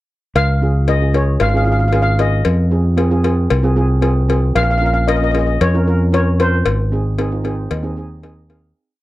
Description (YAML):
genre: calypso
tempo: 114 BPM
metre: 4/4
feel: straight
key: Db major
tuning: A4 = 438 Hz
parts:
  - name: steel pan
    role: melody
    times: 0.4-8.2 s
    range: C5 to F5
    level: -19 LUFS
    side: left 1 dB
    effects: none
  - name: fingered electric bass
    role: bass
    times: 0.4-8.7 s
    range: Ab1 to F2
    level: -15 LUFS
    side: equal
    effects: none
  - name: cowbell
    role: percussion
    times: 0.4-8.6 s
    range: none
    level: -23 LUFS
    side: left 7 dB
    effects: none
  - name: steel pan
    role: accompaniment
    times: 0.6-8.8 s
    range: C4 to F5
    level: -21 LUFS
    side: right 3 dB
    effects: none
room: little or no reverb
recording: dry, close 1970s-style studio recording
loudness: -13 LUFS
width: side -16 dB against mid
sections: 0.4-8.8 verse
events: fade-out 6.7-8.8; steel pan fill 7.2-8.8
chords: 0.4 Db; 2.5 Fm7; 4.6 Bbm; 6.7 Ab